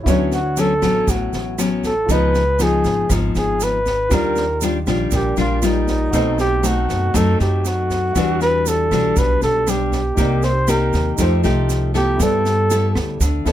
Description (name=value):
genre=bossa nova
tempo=119 BPM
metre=4/4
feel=straight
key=unclear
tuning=A4 = 439 Hz
part: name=nylon-string guitar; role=accompaniment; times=0.0-13.5 s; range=G#2 to A4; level=-21 LUFS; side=left 4 dB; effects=none
part: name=warm baby grand piano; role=accompaniment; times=0.0-13.5 s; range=Eb4 to F#5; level=-29 LUFS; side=right 2 dB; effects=none
part: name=upright bass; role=bass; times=0.0-13.5 s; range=G#1 to G2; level=-21 LUFS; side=right 1 dB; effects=none
part: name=open jazz drum kit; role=drums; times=0.1-13.5 s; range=kick drum, rim click, snare drum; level=-25 LUFS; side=right 1 dB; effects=none
part: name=tube shaker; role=percussion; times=0.1-13.5 s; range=none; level=-30 LUFS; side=right 9 dB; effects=none
part: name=mellow flugelhorn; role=melody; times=0.3-13.0 s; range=Eb4 to C5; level=-20 LUFS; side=right 1 dB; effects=none
room=little or no reverb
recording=close, detailed microphones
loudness=-15 LUFS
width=side -12 dB against mid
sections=0.1-13.5 A section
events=flugelhorn solo 0.1-13.5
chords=0.1 Dmaj13; 2.1 C#9; 4.1 Ebmaj9; 6.1 B7b9; 8.2 Em9; 10.2 Cm7; 11.2 F9; 12.2 G69